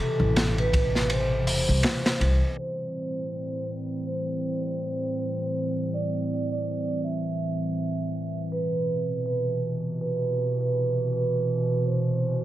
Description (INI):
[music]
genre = trip hop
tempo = 81 BPM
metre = 4/4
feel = swing 59% on 16ths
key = A minor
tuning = A4 = 440 Hz
[part]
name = vibraphone with soft mallets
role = melody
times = 0.0-12.4 s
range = A4 to E5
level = -29 LUFS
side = right 2 dB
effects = tape echo
[part]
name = warbly tape-like pad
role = sustained chords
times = 0.0-12.4 s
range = A2 to C4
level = -28 LUFS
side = equal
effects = chorus, built-in reverb
[part]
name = upright bass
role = bass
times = 0.2-2.4 s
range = E1 to C2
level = -25 LUFS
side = equal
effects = none
[part]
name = crunchy breakbeat drum kit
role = drums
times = 0.4-2.4 s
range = hi-hat, kick drum, ride cymbal, snare drum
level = -26 LUFS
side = equal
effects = none
[sound]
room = light reverb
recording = vinyl crackle, low-pass filter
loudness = -24 LUFS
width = side -13 dB against mid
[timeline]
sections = 0.0-2.6 A section; 2.6-12.4 B section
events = kick drops out 1.1-2.6; filter sweep 2.6-12.4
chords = 0.0 Cmaj7; 2.6 Am7; 8.5 Cmaj7